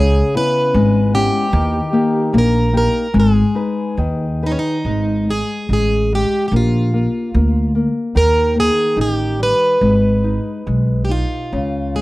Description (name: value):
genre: fado-style ballad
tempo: 68-76 BPM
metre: 2/4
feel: rubato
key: G# harmonic minor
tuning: A4 = 441 Hz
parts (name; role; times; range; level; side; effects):
- picked plugged-in twelve-string acoustic guitar; melody; 0.0-12.0 s; C#4 to B4; -19 LUFS; right 1 dB; none
- nylon-string guitar; accompaniment; 0.0-12.0 s; C#3 to B4; -19 LUFS; left 3 dB; none
- upright bass; bass; 0.0-12.0 s; G#1 to D#2; -17 LUFS; right 1 dB; none
room: little or no reverb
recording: dry, close 1970s-style studio recording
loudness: -14 LUFS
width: side -18 dB against mid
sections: 0.0-4.9 A section; 4.9-12.0 B section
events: none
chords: 0.0 C#m7; 1.5 D#; 3.1 G#m; 4.9 G#5; 6.5 A#; 8.1 D#; 9.8 G#m; 11.5 C#5